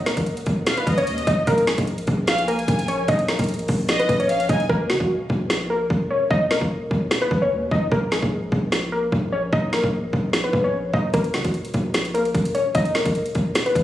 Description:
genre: hip hop, trap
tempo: 149 BPM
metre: 4/4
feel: half-time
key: Eb minor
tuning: A4 = 439 Hz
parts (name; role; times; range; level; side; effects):
- warbly dusty pluck; melody; 0.0-13.8 s; Gb4 to Eb5; -23 LUFS; left 1 dB; chorus, ping-pong delay
- hard-hitting 808-style bass; bass; 0.0-13.8 s; Eb1 to Eb2; -27 LUFS; equal; none
- trap drum kit; drums; 0.1-13.8 s; hi-hat, kick drum, snare drum; -23 LUFS; equal; none
- warm symphonic violin section; second line; 0.7-4.7 s; Eb5 to Ab5; -28 LUFS; equal; ping-pong delay
room: little or no reverb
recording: recorded on a phone in the room, studio reverb, vinyl crackle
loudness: -19 LUFS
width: side -13 dB against mid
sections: 0.0-4.7 A section; 4.7-13.8 B section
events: hi-hats muted 4.7-11.1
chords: 0.0 Eb5; 1.5 Bb7sus4; 4.7 Ebm; 7.9 Bbm7; 11.1 Ebm

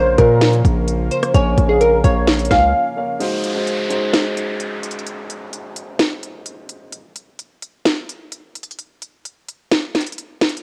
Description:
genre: hip hop, trap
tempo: 129 BPM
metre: 4/4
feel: half-time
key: unclear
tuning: A4 = 442 Hz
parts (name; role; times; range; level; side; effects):
- glassy wavetable pluck; melody; 0.0-3.2 s; Ab4 to F5; -19 LUFS; equal; chorus, low-pass filter, cassette tape
- dark concert grand piano; accompaniment; 0.0-6.9 s; Ab3 to Ab5; -26 LUFS; equal; low-pass filter, cassette tape
- airy breathy pad; sustained chords; 0.0-3.2 s; Db3 to F4; -33 LUFS; equal; none
- hard-hitting 808-style bass; bass; 0.0-2.7 s; Bb1 to Bb2; -20 LUFS; equal; none
- trap drum kit; drums; 0.2-10.6 s; hi-hat, kick drum, rim click, snare drum; -20 LUFS; equal; cassette tape
- downlifter; sound effects; 3.2-6.9 s; none; -31 LUFS; equal; none
room: digital ambience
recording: home recording on cassette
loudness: -17 LUFS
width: mono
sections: 0.0-3.2 A section; 3.2-10.6 B section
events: break 2.7-3.2, 3.2-10.6; kick muted 9.7-10.6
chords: 0.0 Bbm; 3.2 Ab7; 6.9 N.C.

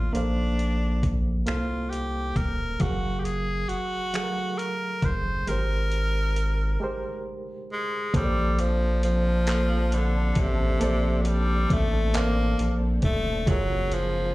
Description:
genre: slow six-eight R&B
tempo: 45 BPM (dotted quarters)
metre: 6/8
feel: straight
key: Bb major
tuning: A4 = 439 Hz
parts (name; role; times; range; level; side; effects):
- edgy tenor saxophone; melody; 0.0-14.3 s; C3 to C5; -29 LUFS; left 1 dB; slapback echo, plate reverb
- reed electric piano; accompaniment; 0.0-14.3 s; Gb3 to F5; -31 LUFS; right 2 dB; fast tremolo, plate reverb
- rubbery square bass; bass; 0.0-14.3 s; Eb1 to C2; -25 LUFS; equal; none
- dusty soul sampler-style drum kit; drums; 0.1-14.1 s; finger snaps, handclaps, hi-hat, kick drum; -27 LUFS; equal; none
- warm studio string section; sustained chords; 8.2-14.3 s; C3 to A4; -38 LUFS; left 1 dB; plate reverb
room: little or no reverb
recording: live gig heard through the venue's PA, club reverb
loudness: -23 LUFS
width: side -18 dB against mid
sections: 0.0-8.1 A section; 8.1-14.3 B section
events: break 6.8-8.1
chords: 0.0 Bbmaj9; 2.8 Gbmaj9; 5.5 Abmaj9; 8.1 Bbmaj9; 13.5 Gbmaj9

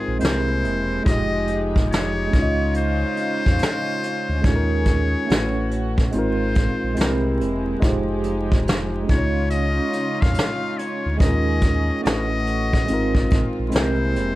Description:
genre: lo-fi hip hop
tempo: 71 BPM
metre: 4/4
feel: swing 64% on 16ths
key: unclear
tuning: A4 = 444 Hz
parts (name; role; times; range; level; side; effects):
- trumpet with metal mute; melody; 0.0-14.4 s; Ab4 to F5; -27 LUFS; left 3 dB; plate reverb
- tine electric piano; accompaniment; 0.0-14.4 s; Ab3 to Eb5; -24 LUFS; right 1 dB; medium stereo tremolo, cassette tape, plate reverb
- warm studio string section; sustained chords; 0.0-14.4 s; C3 to Ab4; -30 LUFS; left 1 dB; plate reverb
- sub bass with octave; bass; 0.1-14.4 s; E1 to F2; -25 LUFS; equal; none
- vintage brush drum kit; drums; 0.2-14.4 s; hi-hat, kick drum, snare drum; -21 LUFS; equal; none
room: light reverb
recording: vinyl crackle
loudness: -18 LUFS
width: side -16 dB against mid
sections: 0.0-14.4 A section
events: none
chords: 0.2 C7b13; 1.1 Fm9; 2.3 Dbmaj9; 4.4 Eb7sus4; 5.3 A69; 6.1 Ab69; 7.0 C7b13; 7.8 Fm9; 9.1 Dbadd9; 11.2 Eb7sus4; 12.0 A69; 12.9 Ab69; 13.7 C7b13

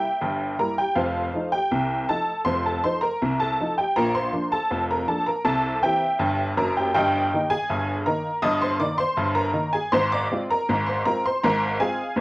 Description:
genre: ragtime piano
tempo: 80 BPM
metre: 2/4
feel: straight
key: Eb major from 7.0 s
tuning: A4 = 440 Hz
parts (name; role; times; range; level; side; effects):
- honky-tonk upright piano; solo; 0.0-12.2 s; F1 to Eb6; -21 LUFS; equal; none
room: light reverb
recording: worn, warbling old tape, cassette tape, warbly pitch drift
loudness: -21 LUFS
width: side -22 dB against mid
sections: 0.0-12.2 A section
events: none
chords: 0.0 C7 (rootless); 1.0 F7; 4.0 Bb; 5.5 C7; 7.0 Eb/G; 9.9 Fm/Ab

